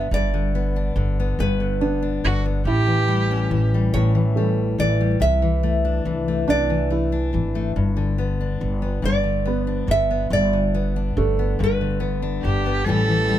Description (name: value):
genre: acoustic folk-pop ballad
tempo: 47 BPM (dotted quarters)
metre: 6/8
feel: straight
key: G major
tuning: A4 = 440 Hz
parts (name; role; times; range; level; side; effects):
- nylon-string guitar; melody; 0.0-12.5 s; B4 to E5; -25 LUFS; right 3 dB; none
- fingerpicked steel-string acoustic guitar; accompaniment; 0.0-13.4 s; G2 to G4; -24 LUFS; left 5 dB; none
- upright bass; bass; 0.0-13.4 s; G1 to C2; -22 LUFS; right 1 dB; none
- felt-muted upright piano; arpeggios; 1.8-13.3 s; A3 to E4; -28 LUFS; right 4 dB; none
- warm cello; second line; 2.2-3.7, 12.4-13.4 s; F#4 to A4; -24 LUFS; right 3 dB; none
room: little or no reverb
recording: close, detailed microphones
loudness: -19 LUFS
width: side -12 dB against mid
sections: 0.0-13.4 A section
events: none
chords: 0.0 G; 2.7 A7; 5.2 C69; 7.8 G; 12.9 A7